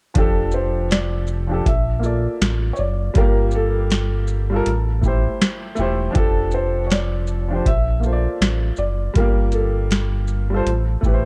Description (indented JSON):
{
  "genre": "lo-fi hip hop",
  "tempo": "80 BPM",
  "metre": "4/4",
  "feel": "swing 62% on 16ths",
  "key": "unclear",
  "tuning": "A4 = 440 Hz",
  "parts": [
    { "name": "warm upright piano", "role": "accompaniment", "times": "0.1-11.3 s", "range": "F3 to D5", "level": "-27 LUFS", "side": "equal", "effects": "cassette tape" },
    { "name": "booming analog drum machine", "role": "drums", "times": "0.1-11.3 s", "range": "hi-hat, kick drum, shaker, snare drum", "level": "-22 LUFS", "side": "equal", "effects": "none" },
    { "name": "felt-muted upright piano", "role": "melody", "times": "0.2-11.0 s", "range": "A4 to E5", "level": "-29 LUFS", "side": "equal", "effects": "tape echo" },
    { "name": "smooth gliding synth bass", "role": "bass", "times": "0.2-11.3 s", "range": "E1 to Bb1", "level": "-24 LUFS", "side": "equal", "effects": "none" }
  ],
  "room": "light reverb",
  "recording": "dark, warm production",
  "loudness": "-20 LUFS",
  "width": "mono",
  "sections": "0.2-11.3 A section",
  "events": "none",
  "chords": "0.2 F69; 1.7 Bbmaj7; 3.2 Gm9; 4.7 Am7; 6.2 F69; 7.7 Bbmaj7; 9.2 Gm9; 10.7 Am7"
}